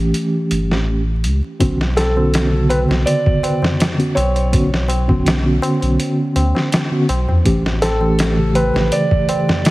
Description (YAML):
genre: trip hop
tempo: 82 BPM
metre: 4/4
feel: straight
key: B minor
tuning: A4 = 440 Hz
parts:
  - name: mellow tine electric piano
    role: accompaniment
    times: 0.0-9.7 s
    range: C#3 to G4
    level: -18 LUFS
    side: equal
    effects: medium stereo tremolo, low-pass filter, tape echo
  - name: warm sub bass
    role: bass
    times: 0.0-8.9 s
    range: G1 to E2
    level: -18 LUFS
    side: equal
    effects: tube saturation
  - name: trip hop sampler-style drum kit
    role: drums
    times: 0.1-9.7 s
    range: hi-hat, kick drum, snare drum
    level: -19 LUFS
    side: equal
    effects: studio reverb
  - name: tabla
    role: percussion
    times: 1.6-9.7 s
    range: none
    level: -26 LUFS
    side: left 1 dB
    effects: none
  - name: felt-muted upright piano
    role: melody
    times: 2.0-9.7 s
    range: A4 to D5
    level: -21 LUFS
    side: right 1 dB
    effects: tape echo
room: light reverb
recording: heavily compressed radio sound, vinyl crackle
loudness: -14 LUFS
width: side -18 dB against mid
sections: 0.0-9.7 A section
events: kick drops out 0.1-1.6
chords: 0.0 A7; 1.6 Bmadd9; 7.5 A7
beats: 0.14 0.87 | 1.60 2.34 3.07 3.80 | 4.53 5.26 5.99 6.73 | 7.46 8.19 8.92 9.65